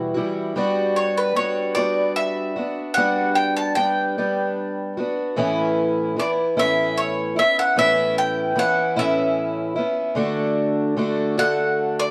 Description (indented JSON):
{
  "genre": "acoustic folk duo or small band",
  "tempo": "50 BPM (dotted quarters)",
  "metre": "6/8",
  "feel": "straight",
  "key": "A mixolydian",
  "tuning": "A4 = 439 Hz",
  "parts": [
    { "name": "bowl-back mandolin", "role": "melody", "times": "0.0-12.1 s", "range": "B4 to A5", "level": "-24 LUFS", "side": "equal", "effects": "none" },
    { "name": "fingerpicked twelve-string acoustic guitar", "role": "accompaniment", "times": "0.0-12.1 s", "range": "E2 to F#4", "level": "-24 LUFS", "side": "equal", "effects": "none" }
  ],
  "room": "moderate large studio reverb, RT60 0.9 s",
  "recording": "none",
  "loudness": "-21 LUFS",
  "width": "mono",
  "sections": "0.0-12.1 A section",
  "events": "mandolin solo 0.0-12.1",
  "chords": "0.0 Emadd9; 0.6 Gmaj7; 5.4 Aadd9; 10.2 D"
}